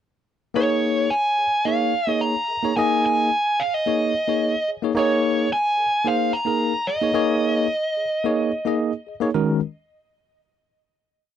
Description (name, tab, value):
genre	jazz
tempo	110 BPM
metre	4/4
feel	straight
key	unclear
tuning	A4 = 441 Hz
part	bell-like tine electric piano	accompaniment	0.5-9.6 s	Eb3 to Eb5	-22 LUFS	left 1 dB	slow stereo tremolo
part	bluesy overdriven lead guitar	melody	0.6-8.7 s	Db5 to Bb5	-21 LUFS	right 1 dB	distortion
room	light reverb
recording	dry, close 1970s-style studio recording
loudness	-19 LUFS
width	side -9 dB against mid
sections	0.6-9.3 groove; 9.3-11.4 final chord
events	none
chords	0.6 Eb7sus4; 5.0 Absus24; 9.3 Ebm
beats	| 0.57 1.12 1.67 2.22 | 2.77 3.32 3.87 4.42 | 4.96 5.51 6.06 6.61 | 7.15 7.70 8.24 8.79 | 9.33